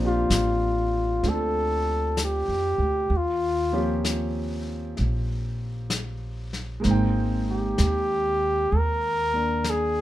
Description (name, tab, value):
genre	jazz ballad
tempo	64 BPM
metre	4/4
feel	swing 67% on 8ths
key	unclear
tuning	A4 = 441 Hz
part	clear baby grand piano	accompaniment	0.0-10.0 s	F3 to G5	-30 LUFS	equal	none
part	upright bass	bass	0.0-10.0 s	Ab1 to F2	-27 LUFS	equal	none
part	trumpet with bucket mute	melody	0.1-10.0 s	F4 to Bb4	-24 LUFS	left 1 dB	none
part	vintage brush drum kit	drums	0.3-10.0 s	brushed snare drum, hi-hat, snare drum	-32 LUFS	left 3 dB	none
room	light reverb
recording	minimal, uncompressed stereo recording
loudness	-22 LUFS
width	side -14 dB against mid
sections	0.0-10.0 A section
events	none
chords	0.0 Bb69; 3.1 Eb13; 6.8 Abmaj9